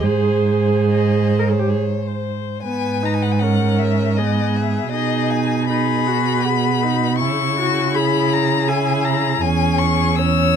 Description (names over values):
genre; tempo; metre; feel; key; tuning
classical, slow romantic movement for string quartet; 68-83 BPM; 3/4; rubato; G# minor; A4 = 440 Hz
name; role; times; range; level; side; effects
rich violin; melody; 0.0-10.6 s; C5 to E6; -22 LUFS; left 10 dB; none
rich violin; second line; 0.0-10.6 s; E4 to C#5; -25 LUFS; left 4 dB; none
rich viola; accompaniment; 0.0-10.6 s; B3 to Bb4; -23 LUFS; right 2 dB; none
rich cello; bass; 0.0-10.6 s; E2 to C#3; -19 LUFS; right 4 dB; none
room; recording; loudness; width
light reverb; dark, warm production; -16 LUFS; side -7 dB against mid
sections
0.0-2.6 A section; 2.6-10.6 B section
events
none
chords
0.0 Ab; 2.6 G#m; 4.9 G#m/B; 7.2 C#m; 9.4 C#m/E